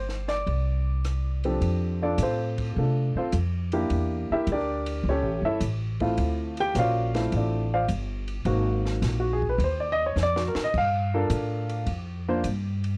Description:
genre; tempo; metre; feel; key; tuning
jazz piano trio; 105 BPM; 4/4; swing 69% on 8ths; F major; A4 = 440 Hz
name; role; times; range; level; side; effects
warm baby grand piano; melody; 0.0-12.4 s; F3 to G5; -29 LUFS; equal; none
upright bass; bass; 0.0-13.0 s; G1 to C3; -29 LUFS; equal; transformer saturation
compact cocktail drum kit; drums; 0.1-12.9 s; crash cymbal, hi-hat, kick drum, ride cymbal, rim click, snare drum; -42 LUFS; equal; none
room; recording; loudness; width
light reverb; worn, warbling old tape, cassette tape, warbly pitch drift; -26 LUFS; mono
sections
0.0-1.6 A section; 1.6-13.0 B section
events
grand piano solo 1.6-13.0; drum fill 10.2-10.7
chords
0.5 Csus2; 1.6 F6; 3.9 Em7b5; 5.0 A7; 6.2 Dm7; 8.5 Ab9; 10.7 Gm9

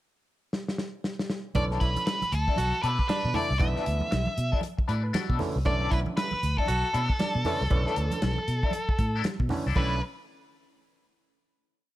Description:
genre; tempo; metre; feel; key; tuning
funk; 117 BPM; 4/4; swing 60% on 16ths; B minor; A4 = 440 Hz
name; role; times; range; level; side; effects
warm soul drum kit; drums; 0.5-9.9 s; crash cymbal, hi-hat, kick drum, snare drum; -29 LUFS; equal; none
congas; percussion; 1.5-10.0 s; none; -36 LUFS; right 3 dB; none
nasal lead guitar with a parked wah; melody; 1.6-10.0 s; A4 to E5; -30 LUFS; equal; overdrive, plate reverb
warm baritone saxophone; second line; 1.6-9.9 s; D4 to F#4; -35 LUFS; right 3 dB; plate reverb
electric guitar at the edge of break-up; accompaniment; 1.6-9.9 s; D4 to B4; -35 LUFS; left 8 dB; wah, tremolo, plate reverb
mellow clav; stabs; 1.6-10.0 s; D3 to D5; -34 LUFS; right 2 dB; phaser, plate reverb
vintage muted fingered electric bass; bass; 1.6-10.0 s; B1 to B2; -28 LUFS; equal; none
room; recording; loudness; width
light reverb, small room ambience; none; -25 LUFS; side -15 dB against mid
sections
0.0-1.6 pickup bar; 1.6-9.8 A section; 9.8-11.8 final chord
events
drum fill 0.5-1.6; clav fill 4.6-5.7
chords
0.0 N.C.; 1.6 Bm11

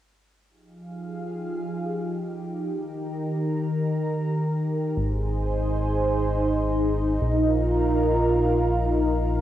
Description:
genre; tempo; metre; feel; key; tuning
synthwave; free time; none; none; F minor; A4 = 440 Hz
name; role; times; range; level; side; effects
lush unison pad; sustained chords; 0.5-9.4 s; Eb3 to Bb5; -24 LUFS; equal; chorus, cassette tape
chorused synth bass; bass; 5.0-9.4 s; Ab1 to Bb1; -25 LUFS; equal; none
room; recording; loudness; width
wet small room reverb, RT60 0.5 s; home recording on cassette, faint mains hum; -22 LUFS; side -12 dB against mid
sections
0.5-9.4 A section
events
none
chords
0.5 Fm7; 2.7 Eb; 5.0 Ab; 7.2 Bbsus4

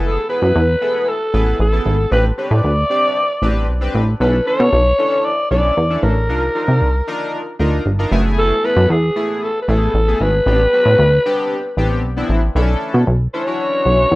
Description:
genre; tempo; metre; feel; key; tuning
early-eighties boogie funk; 115 BPM; 4/4; straight; B minor; A4 = 440 Hz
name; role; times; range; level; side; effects
growling alto saxophone; melody; 0.0-14.2 s; G#4 to D5; -17 LUFS; equal; none
chorused polysynth; accompaniment; 0.0-14.1 s; A3 to D5; -23 LUFS; left 1 dB; none
plucky analog bass; bass; 0.0-14.2 s; F#1 to C3; -15 LUFS; equal; none
room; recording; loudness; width
moderate studio reverb, RT60 0.6 s; rough home demo mix; -14 LUFS; side -19 dB against mid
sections
0.0-12.6 A section; 12.6-14.2 B section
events
none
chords
0.0 F#m11; 2.1 Am11; 4.2 Bm11; 6.3 Cm11; 8.1 F#m11; 10.5 Am11; 12.6 Bm11

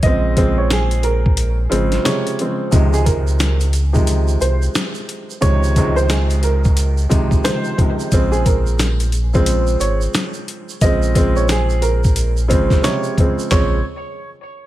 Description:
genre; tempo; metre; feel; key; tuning
hip hop, boom-bap hip-hop; 89 BPM; 4/4; swing 61% on 16ths; Bb minor; A4 = 440 Hz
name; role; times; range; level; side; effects
warm upright piano; melody; 0.0-13.8 s; Ab4 to Eb5; -24 LUFS; right 3 dB; high-pass filter, low-pass filter, tape echo
dark grand piano; accompaniment; 0.0-13.8 s; Db2 to C4; -20 LUFS; equal; high-pass filter, low-pass filter
sub bass with octave; bass; 0.0-13.8 s; Ab1 to Db2; -17 LUFS; equal; none
boom bap sampler-style drum kit; drums; 0.0-13.7 s; handclaps, hi-hat, kick drum, snare drum, toms; -18 LUFS; equal; none
tube shaker; percussion; 2.7-13.8 s; none; -33 LUFS; right 8 dB; none
room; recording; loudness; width
light reverb, small room ambience; none; -14 LUFS; side -14 dB against mid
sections
0.0-2.7 A section; 2.7-13.5 B section; 13.5-14.7 C section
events
break 1.4-2.7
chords
0.0 Bbm9; 2.7 Dbmaj7; 8.1 Bbm9

